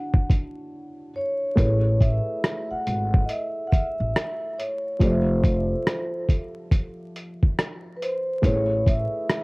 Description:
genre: lo-fi hip hop.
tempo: 70 BPM.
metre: 4/4.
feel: swing 64% on 16ths.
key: A major.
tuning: A4 = 440 Hz.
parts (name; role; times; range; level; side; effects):
vibraphone with soft mallets; melody; 0.0-9.4 s; B4 to F#5; -28 LUFS; equal; low-pass filter.
felt-muted upright piano; accompaniment; 0.0-9.4 s; D3 to E5; -31 LUFS; equal; cassette tape, low-pass filter.
lo-fi sampler-style drum kit; drums; 0.1-9.4 s; hi-hat, kick drum, rim click; -20 LUFS; equal; none.
upright bass; bass; 1.6-9.0 s; F1 to A1; -24 LUFS; equal; none.
room: small room ambience.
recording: worn, warbling old tape, cassette tape, vinyl crackle, warbly pitch drift.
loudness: -21 LUFS.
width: side -30 dB against mid.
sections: 0.0-1.6 A section; 1.6-9.4 B section.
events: break 0.7-1.6.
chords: 0.0 Dmaj9; 1.6 Amaj9; 5.0 Fmaj9; 8.4 Amaj9.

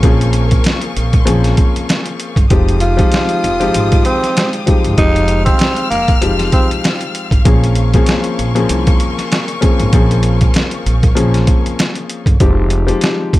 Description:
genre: hip hop, boom-bap hip-hop.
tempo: 97 BPM.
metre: 4/4.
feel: swing 56% on 16ths.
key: F minor.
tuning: A4 = 439 Hz.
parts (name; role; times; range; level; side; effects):
dark concert grand piano; accompaniment; 0.0-13.4 s; F3 to Ab4; -18 LUFS; left 3 dB; plate reverb.
warm studio string section; sustained chords; 0.0-12.4 s; Ab3 to F6; -24 LUFS; left 3 dB; plate reverb.
upright bass; bass; 0.0-13.4 s; F1 to C2; -15 LUFS; equal; none.
trip hop sampler-style drum kit; drums; 0.0-13.4 s; hi-hat, kick drum, snare drum; -13 LUFS; equal; overdrive.
growling tenor saxophone; melody; 2.8-6.7 s; Bb3 to F4; -17 LUFS; right 1 dB; plate reverb, tape echo.
room: light reverb.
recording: none.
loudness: -11 LUFS.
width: side -17 dB against mid.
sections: 0.0-12.4 A section.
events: none.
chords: 0.0 Bbm7; 2.5 Fm9; 7.5 Bbm7; 12.4 Fm9.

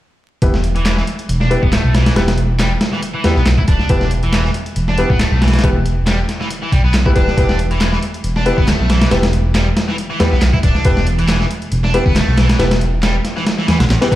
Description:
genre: breakbeat, breaks.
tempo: 138 BPM.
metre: 4/4.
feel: swing 55% on 16ths.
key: E minor.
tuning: A4 = 440 Hz.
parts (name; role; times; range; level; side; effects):
bright grand piano; stabs; 0.4-14.2 s; B3 to B4; -21 LUFS; left 2 dB; low-pass filter, ping-pong delay.
dark detuned saw bass; bass; 0.4-14.0 s; D1 to E2; -15 LUFS; equal; none.
dusty soul sampler-style drum kit; drums; 0.4-14.2 s; hi-hat, kick drum, snare drum; -17 LUFS; equal; none.
distorted electric guitar; riff; 0.8-14.2 s; D3 to E4; -22 LUFS; equal; overdrive, low-pass filter, ping-pong delay.
electronic handclaps; drums; 0.9-14.0 s; none; -28 LUFS; equal; none.
room: light reverb, digital ambience.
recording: played on a big sound system in a bare room, large studio reverb, vinyl crackle.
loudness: -12 LUFS.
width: side -14 dB against mid.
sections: 0.4-14.2 A section.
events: none.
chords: 0.4 Em.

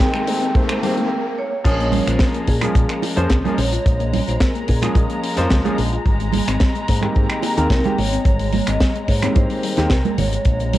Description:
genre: nu-disco, nu disco.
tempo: 109 BPM.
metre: 4/4.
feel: straight.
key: unclear.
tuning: A4 = 439 Hz.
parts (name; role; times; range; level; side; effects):
vibraphone with medium mallets; melody; 0.0-10.8 s; Ab4 to Eb5; -27 LUFS; right 2 dB; vintage 12-bit sampler grit, cassette tape, analog delay.
clear grand piano; accompaniment; 0.0-9.9 s; Eb3 to C5; -23 LUFS; left 1 dB; sidechain pumping, cassette tape.
dark studio violin section; sustained chords; 0.0-10.8 s; Ab3 to Bb5; -30 LUFS; left 1 dB; sidechain pumping, cassette tape.
soft round pluck; arpeggios; 0.0-10.8 s; G3 to G4; -29 LUFS; left 8 dB; analog chorus, sidechain pumping, cassette tape, analog delay.
kick drum; drums; 0.0-10.6 s; none; -18 LUFS; equal; cassette tape.
tight funk drum kit; drums; 0.0-10.8 s; crash cymbal, finger snaps, hi-hat, snare drum; -25 LUFS; equal; cassette tape.
riser; sound effects; 0.0-1.1 s; none; -27 LUFS; right 1 dB; none.
fingered electric bass with an envelope filter; bass; 0.3-10.8 s; Ab1 to Bb2; -22 LUFS; equal; high-pass filter.
maracas, congas and bongos; percussion; 1.7-10.8 s; none; -25 LUFS; right 9 dB; none.
room: moderate spring reverb, RT60 2.8 s.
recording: home recording on cassette.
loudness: -16 LUFS.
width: side -14 dB against mid.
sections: 0.0-1.7 A section; 1.7-10.8 B section.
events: build-up 0.0-1.7; riser 0.0-1.1; filter sweep on synth arpeggio sound 0.0-1.7; break 1.1-1.7; drop 1.7-10.8.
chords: 0.0 Abmaj9; 1.7 Bbm7; 6.1 Abmaj9.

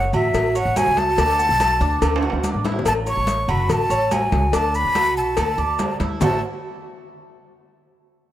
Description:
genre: latin, Cuban son and guajira.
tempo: 143 BPM.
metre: 4/4.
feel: straight.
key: A major.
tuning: A4 = 439 Hz.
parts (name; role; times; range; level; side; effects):
breathy jazz flute; melody; 0.0-6.4 s; E5 to C#6; -21 LUFS; left 1 dB; none.
Cuban tres; arpeggios; 0.0-6.4 s; A3 to D5; -26 LUFS; right 3 dB; none.
upright bass; bass; 0.0-6.4 s; F#1 to D2; -24 LUFS; equal; none.
agogo bells and timbales; percussion; 0.1-6.3 s; none; -28 LUFS; right 4 dB; none.
congas; percussion; 0.1-6.3 s; none; -28 LUFS; equal; none.
maracas; percussion; 0.1-6.3 s; none; -38 LUFS; left 4 dB; none.
cowbell and bongos; percussion; 0.3-6.3 s; none; -28 LUFS; left 6 dB; none.
room: moderate plate reverb, RT60 3.0 s.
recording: rough home demo mix.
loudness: -17 LUFS.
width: side -12 dB against mid.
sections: 0.0-2.9 A section; 2.9-6.2 B section; 6.2-7.9 C section.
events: drum fill 2.0-2.9.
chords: 0.0 A6; 1.2 D6; 2.9 A6; 4.5 D6; 6.2 A5.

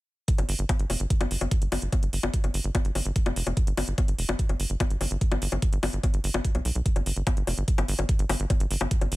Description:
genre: psychedelic trance.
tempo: 146 BPM.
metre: 4/4.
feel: straight.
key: unclear.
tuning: A4 = 443 Hz.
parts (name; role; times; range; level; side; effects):
electronic hi-hat and bongos; drums; 0.3-9.2 s; none; -30 LUFS; left 3 dB; none.
electronic kick drum; drums; 0.3-9.0 s; none; -24 LUFS; equal; none.
tight sequencer bass; bass; 0.4-9.2 s; F1 to B1; -28 LUFS; equal; tube saturation.
room: little or no reverb.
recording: none.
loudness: -24 LUFS.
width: side -19 dB against mid.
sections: 0.3-9.2 A section.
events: none.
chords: none.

